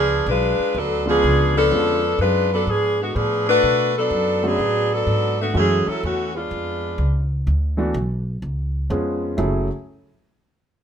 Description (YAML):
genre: jazz, big band swing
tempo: 125 BPM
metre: 4/4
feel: swing 67% on 8ths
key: F# minor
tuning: A4 = 440 Hz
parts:
  - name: warm saxophone section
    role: melody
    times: 0.0-7.3 s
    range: D3 to B4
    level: -18 LUFS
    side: equal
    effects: none
  - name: upright bass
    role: bass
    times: 0.0-9.7 s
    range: F#1 to B2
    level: -23 LUFS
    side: equal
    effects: none
  - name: warm concert grand piano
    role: accompaniment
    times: 1.1-9.7 s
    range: C#3 to G#4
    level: -23 LUFS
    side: equal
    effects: none
room: moderate large studio reverb, RT60 0.8 s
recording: minimal, uncompressed stereo recording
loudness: -18 LUFS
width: side -8 dB against mid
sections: 0.0-7.5 A section; 7.5-9.4 B section; 9.4-10.8 C section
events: none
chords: 0.0 C#7b9; 3.6 Bm7; 5.5 F#m7; 6.5 C#7b9; 7.5 D69; 8.4 C#7; 9.4 F#m7